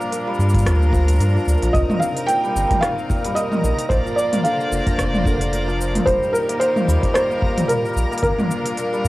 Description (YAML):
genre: folktronica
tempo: 111 BPM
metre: 4/4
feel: swing 56% on 16ths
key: C minor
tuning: A4 = 441 Hz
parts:
  - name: rich string quartet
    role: sustained chords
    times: 0.0-9.1 s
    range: C3 to D5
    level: -28 LUFS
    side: left 1 dB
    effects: cassette tape
  - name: hammered dulcimer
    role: arpeggios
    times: 0.0-9.1 s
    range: Bb2 to D4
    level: -25 LUFS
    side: left 1 dB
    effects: cassette tape, analog delay
  - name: organic electronic drum kit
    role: drums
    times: 0.0-9.1 s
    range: cabasa, hi-hat, rim click, toms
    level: -25 LUFS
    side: equal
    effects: overdrive, cassette tape
  - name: backwards swelling texture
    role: texture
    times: 0.0-9.1 s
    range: Bb4 to Bb5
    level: -32 LUFS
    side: right 4 dB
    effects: built-in reverb, cassette tape
  - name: warm sub bass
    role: bass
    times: 0.4-9.1 s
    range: Eb1 to G2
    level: -19 LUFS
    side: equal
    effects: none
  - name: kick drum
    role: drums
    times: 0.5-8.3 s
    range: none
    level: -24 LUFS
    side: equal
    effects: cassette tape
  - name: felt-muted upright piano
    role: melody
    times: 1.7-9.1 s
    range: Bb4 to G5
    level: -21 LUFS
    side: right 1 dB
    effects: cassette tape, analog delay
room: light reverb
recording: home recording on cassette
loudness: -16 LUFS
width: side -18 dB against mid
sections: 0.0-9.1 A section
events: none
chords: 0.0 Gm7; 1.7 Cm7; 3.9 Bbadd9; 6.1 Eb; 8.2 Gm7